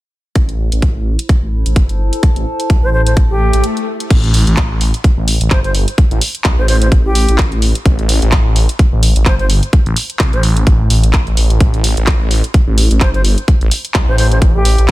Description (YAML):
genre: bass house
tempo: 128 BPM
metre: 4/4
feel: swing 56% on 16ths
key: A minor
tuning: A4 = 440 Hz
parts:
  - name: phased detuned saw bass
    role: bass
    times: 0.4-14.9 s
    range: G1 to C2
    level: -13 LUFS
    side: equal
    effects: phaser, sidechain pumping
  - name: electronic kick drum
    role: drums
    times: 0.4-14.9 s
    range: none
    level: -11 LUFS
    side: equal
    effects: studio reverb
  - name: garage drum kit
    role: drums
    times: 0.4-14.9 s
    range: crash cymbal, handclaps, hi-hat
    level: -19 LUFS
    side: equal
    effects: studio reverb
  - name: warbly tape-like pad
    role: texture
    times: 0.4-4.1 s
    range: E4 to A5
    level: -24 LUFS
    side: left 1 dB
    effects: chorus, built-in reverb, sidechain pumping
  - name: concert flute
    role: melody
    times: 2.8-14.9 s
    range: G4 to C5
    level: -20 LUFS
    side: right 1 dB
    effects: digital delay
  - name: swell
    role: sound effects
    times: 3.3-4.1 s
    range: none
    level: -22 LUFS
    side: left 4 dB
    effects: none
room: little or no reverb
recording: dense, heavily limited modern master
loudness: -10 LUFS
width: side -17 dB against mid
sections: 0.4-4.1 A section; 4.1-14.9 B section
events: fade-in on ambient pad 0.4-4.1; swell 3.3-4.1; break 3.6-4.1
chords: 0.4 Am; 4.1 N.C.